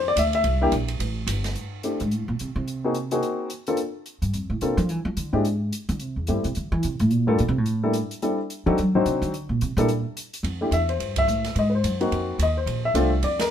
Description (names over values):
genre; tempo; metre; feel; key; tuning
jazz piano trio; 216 BPM; 4/4; swing 60% on 8ths; F major; A4 = 443 Hz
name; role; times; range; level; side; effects
warm baby grand piano; melody; 0.0-13.5 s; Gb3 to E5; -23 LUFS; left 2 dB; none
upright bass; bass; 0.0-13.5 s; G1 to F#3; -24 LUFS; right 1 dB; none
open jazz drum kit; drums; 0.2-13.4 s; hi-hat, kick drum, ride cymbal, snare drum; -34 LUFS; right 3 dB; none
room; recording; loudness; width
light reverb; minimal, uncompressed stereo recording; -22 LUFS; side -9 dB against mid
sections
0.0-1.6 A section; 1.6-10.4 A section; 10.4-13.5 B section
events
grand piano solo 0.0-1.6; upright bass solo 1.6-10.4; band accent 11.1, 13.4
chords
0.4 C7; 1.6 Abadd9; 2.7 Ab9; 3.8 Bbmaj7sus2 (rootless); 4.9 E7; 6.0 Am7 (rootless); 7.1 N.C.; 8.2 Fmaj13; 8.8 D7b9; 9.3 Gm (rootless); 9.9 N.C.; 10.4 Fmaj9; 11.6 Ab9; 12.7 Bbadd9